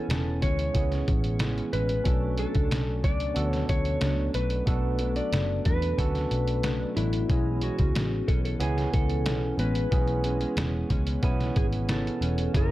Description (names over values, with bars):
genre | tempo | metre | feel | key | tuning
indie pop, bedroom pop | 92 BPM | 4/4 | straight | unclear | A4 = 440 Hz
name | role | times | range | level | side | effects
clean lap steel guitar | melody | 0.0-12.7 s | E4 to D5 | -32 LUFS | left 1 dB | wide subtle chorus, tape echo
barky tine electric piano | accompaniment | 0.0-12.7 s | A#3 to G#5 | -33 LUFS | right 4 dB | none
mellow electric guitar | accompaniment | 0.0-12.7 s | B2 to D4 | -35 LUFS | left 2 dB | analog chorus, vibrato effect
vintage muted picked electric bass | bass | 0.1-12.7 s | E1 to E2 | -28 LUFS | equal | none
lo-fi sampler-style drum kit | drums | 0.1-12.7 s | hi-hat, kick drum, snare drum | -28 LUFS | equal | none
room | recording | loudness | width
little or no reverb | dry, gritty hardware recording | -24 LUFS | side -16 dB against mid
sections
0.0-12.5 A section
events
none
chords
0.0 Amaj9; 2.1 Bm7; 7.3 Amaj9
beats
0.09 0.75 1.40 | 2.06 2.71 3.37 4.02 | 4.67 5.33 5.99 6.64 | 7.30 7.95 8.61 9.26 | 9.92 10.58 11.23 11.89 | 12.54